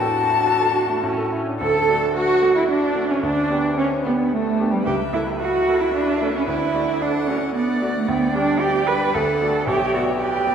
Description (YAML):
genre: quick classical-period movement for piano quartet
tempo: 112 BPM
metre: 3/4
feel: rubato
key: D major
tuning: A4 = 440 Hz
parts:
  - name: clear violin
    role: melody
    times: 0.0-10.5 s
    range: G3 to A5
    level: -26 LUFS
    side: left 6 dB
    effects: none
  - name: rich cello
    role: second line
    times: 0.0-10.5 s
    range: G3 to B4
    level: -20 LUFS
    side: right 3 dB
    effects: none
  - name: bright concert grand piano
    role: accompaniment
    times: 0.0-10.5 s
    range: B1 to D5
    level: -25 LUFS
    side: equal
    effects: none
  - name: clear viola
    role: accompaniment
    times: 0.0-10.5 s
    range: G3 to D5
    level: -28 LUFS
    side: right 3 dB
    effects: none
room: wet concert hall reverb, RT60 2.2 s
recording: heard from further back in the room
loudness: -18 LUFS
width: side -7 dB against mid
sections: 0.0-1.6 A section; 1.6-10.5 B section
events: none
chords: 0.0 D/A; 1.0 A; 1.6 D; 3.2 G/D; 4.9 A/C#; 6.5 D; 8.1 G5/D; 9.1 D; 9.7 G/B